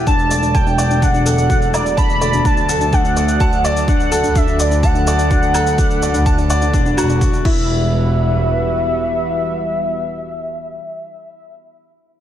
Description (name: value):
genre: piano and strings electronica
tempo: 126 BPM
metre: 4/4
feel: straight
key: unclear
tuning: A4 = 440 Hz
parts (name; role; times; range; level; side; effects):
- lush unison pad; sustained chords; 0.0-11.6 s; D3 to B4; -25 LUFS; equal; chorus, sidechain pumping
- soft round pluck; arpeggios; 0.0-7.9 s; D4 to A5; -26 LUFS; left 4 dB; chorus, sidechain pumping, digital delay
- clear baby grand piano; riff; 0.0-12.2 s; D4 to A5; -21 LUFS; left 1 dB; digital delay
- warm velvety synth lead; melody; 0.1-11.6 s; D5 to B5; -20 LUFS; equal; chorus, cassette tape
- rich chamber double bass section; bass; 0.1-9.1 s; E1 to D2; -19 LUFS; right 1 dB; sidechain pumping
- electronic kick drum; drums; 0.1-7.5 s; none; -17 LUFS; equal; overdrive
- electronic shaker, woodblock and crash cymbal; drums; 0.1-7.5 s; none; -27 LUFS; equal; none
room: light reverb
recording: none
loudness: -13 LUFS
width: side -11 dB against mid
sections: 0.0-7.7 A section; 7.7-11.5 B section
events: drop 0.0-7.7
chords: 0.1 D/E; 7.5 Emadd9